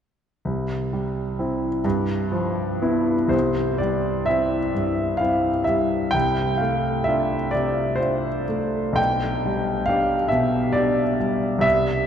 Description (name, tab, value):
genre	classical, romantic nocturne for solo piano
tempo	57-70 BPM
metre	3/4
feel	rubato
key	C major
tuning	A4 = 440 Hz
part	clear grand piano	solo	0.5-12.1 s	B1 to G5	-20 LUFS	equal	none
room	wet cathedral reverb, RT60 6.5 s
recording	in a vast, echoing space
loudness	-20 LUFS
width	side -8 dB against mid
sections	0.4-3.3 A section; 3.3-12.1 B section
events	none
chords	0.4 C; 1.8 G6; 3.3 C; 6.1 Dm7/C; 9.0 G/B